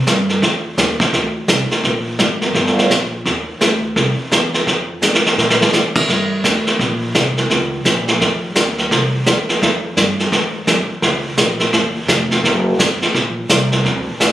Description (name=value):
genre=jazz, small-group swing and bop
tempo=170 BPM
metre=4/4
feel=swing 63% on 8ths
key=unclear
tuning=A4 = 439 Hz
part: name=upright bass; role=bass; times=0.0-14.3 s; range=F1 to D3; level=-20 LUFS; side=equal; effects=none
part: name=vintage brush drum kit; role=drums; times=0.1-14.3 s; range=brushed snare drum, crash cymbal, hi-hat, kick drum, snare drum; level=-14 LUFS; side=right 1 dB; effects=none
room=moderate studio reverb, RT60 0.9 s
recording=recorded on a phone in the room, studio reverb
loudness=-13 LUFS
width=side -13 dB against mid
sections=0.0-6.1 A section; 6.1-14.3 B section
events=drum fill 5.0-5.7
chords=none